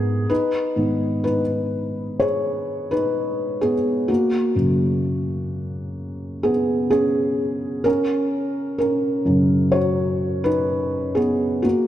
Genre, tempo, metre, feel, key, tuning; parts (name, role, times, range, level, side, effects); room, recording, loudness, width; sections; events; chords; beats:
pop; 63 BPM; 4/4; straight; G# minor; A4 = 440 Hz
felt-muted upright piano; accompaniment; 0.0-11.9 s; F#2 to C#5; -19 LUFS; equal
moderate lush hall reverb, RT60 2.8 s; nothing above 10.3 kHz; -19 LUFS; side -12 dB against mid
0.3-11.9 A section
felt piano solo 0.3-11.9
0.3 G#m; 4.1 F#add9; 7.9 D#m7
| 0.30 1.25 2.20 3.15 | 4.09 5.03 5.97 6.91 | 7.85 8.79 9.74 10.69 | 11.64